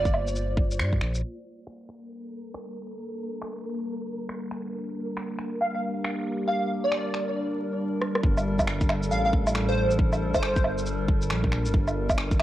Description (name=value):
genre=future garage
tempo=137 BPM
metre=4/4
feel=swing 63% on 16ths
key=G minor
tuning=A4 = 439 Hz
part: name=plucky unison lead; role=melody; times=0.0-0.3, 5.6-10.8 s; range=C5 to F5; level=-29 LUFS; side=right 1 dB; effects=ensemble chorus, cassette tape, analog delay
part: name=warbly tape-like pad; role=sustained chords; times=0.0-12.4 s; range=G3 to D5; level=-32 LUFS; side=equal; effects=chorus, built-in reverb, sidechain pumping, cassette tape
part: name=dark detuned saw bass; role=bass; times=0.0-1.2, 8.2-12.4 s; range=G1 to G2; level=-28 LUFS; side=equal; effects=sidechain pumping
part: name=electronic kick drum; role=drums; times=0.1-1.0, 8.2-12.4 s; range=none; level=-24 LUFS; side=equal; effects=overdrive, cassette tape
part: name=electronic shaker, woodblock, finger snaps and rim click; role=drums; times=0.1-12.4 s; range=none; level=-31 LUFS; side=right 1 dB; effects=overdrive, low-pass filter on perc, cassette tape, low-pass filter on snare
part: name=wind-like tuned noise texture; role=texture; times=1.9-7.4 s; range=Bb3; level=-37 LUFS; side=equal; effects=built-in reverb, cassette tape
room=moderate spring reverb, RT60 1.7 s, digital ambience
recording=home recording on cassette, vinyl crackle, low-pass filter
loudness=-24 LUFS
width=side -14 dB against mid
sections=0.0-1.2 A section; 1.2-8.2 B section; 8.2-12.4 C section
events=filter sweep on drum 1.2-8.2; filter sweep on ambient pad 1.2-8.2; filter sweep 1.2-8.2; drum fill 8.0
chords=0.0 Gm7; 8.2 Gm